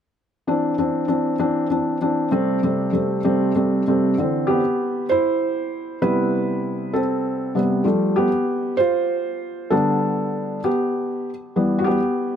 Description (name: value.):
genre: pop.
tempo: 65 BPM (dotted quarters).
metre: 6/8.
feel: straight.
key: C major.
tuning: A4 = 440 Hz.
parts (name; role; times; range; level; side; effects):
felt-muted upright piano; accompaniment; 0.5-12.4 s; C3 to C5; -19 LUFS; equal; none.
room: moderate plate reverb, RT60 3.4 s.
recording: none.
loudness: -19 LUFS.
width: side -8 dB against mid.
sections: 0.5-4.2 A section; 4.2-12.4 B section.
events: felt piano solo 4.2-12.4.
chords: 0.5 Cadd9; 2.3 Am7/C; 4.2 Cadd9; 6.0 Am7/C; 7.9 Fadd9; 9.7 G; 11.6 Em.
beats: | 0.48 1.40 | 2.33 3.25 | 4.18 5.10 | 6.02 6.95 | 7.87 8.79 | 9.71 10.63 | 11.56.